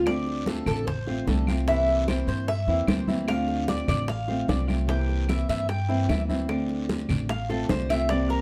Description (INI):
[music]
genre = latin, Cuban son and guajira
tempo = 150 BPM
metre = 4/4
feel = straight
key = D minor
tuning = A4 = 441 Hz
[part]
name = nylon-string guitar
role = accompaniment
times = 0.0-8.4 s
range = C3 to F4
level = -31 LUFS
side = equal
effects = none
[part]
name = Cuban tres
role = arpeggios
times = 0.0-8.4 s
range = A4 to G5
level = -31 LUFS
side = equal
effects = none
[part]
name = upright bass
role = bass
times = 0.0-8.4 s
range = A1 to G2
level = -30 LUFS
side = equal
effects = none
[part]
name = bongos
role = percussion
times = 0.1-8.4 s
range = none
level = -34 LUFS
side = equal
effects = none
[part]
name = claves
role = percussion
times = 0.1-8.1 s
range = none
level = -42 LUFS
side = equal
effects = none
[part]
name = congas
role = percussion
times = 0.1-8.4 s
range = none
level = -35 LUFS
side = equal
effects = none
[part]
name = guiro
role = percussion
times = 0.1-8.4 s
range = none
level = -45 LUFS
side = equal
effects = none
[sound]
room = moderate studio reverb, RT60 0.6 s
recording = dark, warm production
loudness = -26 LUFS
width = mono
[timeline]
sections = 0.1-8.4 A section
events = Cuban tres solo 0.1-8.4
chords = 0.1 Dm7; 1.7 C7; 3.3 Dm7; 4.9 C7; 6.5 Dm7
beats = | 0.07 0.47 0.87 1.27 | 1.67 2.08 2.48 2.88 | 3.28 3.68 4.08 4.49 | 4.89 5.29 5.69 6.09 | 6.49 6.89 7.29 7.70 | 8.10